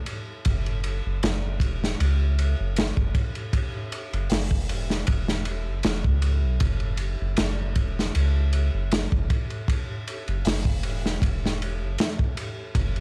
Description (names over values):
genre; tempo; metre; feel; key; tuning
trip hop; 78 BPM; 4/4; swing 54% on 16ths; unclear; A4 = 440 Hz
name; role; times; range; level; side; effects
crunchy breakbeat drum kit; drums; 0.1-13.0 s; hi-hat, kick drum, ride cymbal, snare drum; -25 LUFS; equal; none
soft dub sub bass; bass; 0.5-13.0 s; E1 to C#2; -24 LUFS; equal; tube saturation
room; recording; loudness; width
little or no reverb; dry, gritty hardware recording, vinyl crackle; -22 LUFS; side -39 dB against mid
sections
0.0-13.0 A section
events
none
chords
none